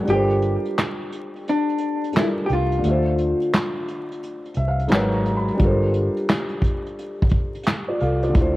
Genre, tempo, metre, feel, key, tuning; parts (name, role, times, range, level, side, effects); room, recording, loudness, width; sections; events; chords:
lo-fi hip hop; 87 BPM; 4/4; swing 64% on 16ths; G dorian; A4 = 445 Hz
felt-muted upright piano; accompaniment; 0.0-8.6 s; D3 to Cb6; -24 LUFS; equal; cassette tape, low-pass filter
vintage hollow-body jazz guitar; melody; 0.1-5.2 s; D4 to G4; -24 LUFS; left 1 dB; low-pass filter, cassette tape
vintage muted fingered electric bass; bass; 0.1-8.6 s; G1 to D2; -23 LUFS; equal
vintage brush drum kit; drums; 0.1-8.6 s; handclaps, hi-hat, kick drum, snare drum; -22 LUFS; equal; vintage 12-bit sampler grit, cassette tape
light reverb, small room ambience; home recording on cassette, vinyl crackle; -19 LUFS; side -17 dB against mid
0.0-8.6 A section
break 0.0-5.6; kick muted 2.8-5.6; felt piano fill 4.2-5.6
0.1 Gm11; 2.8 Dm7; 4.9 Abm11; 5.6 Gm11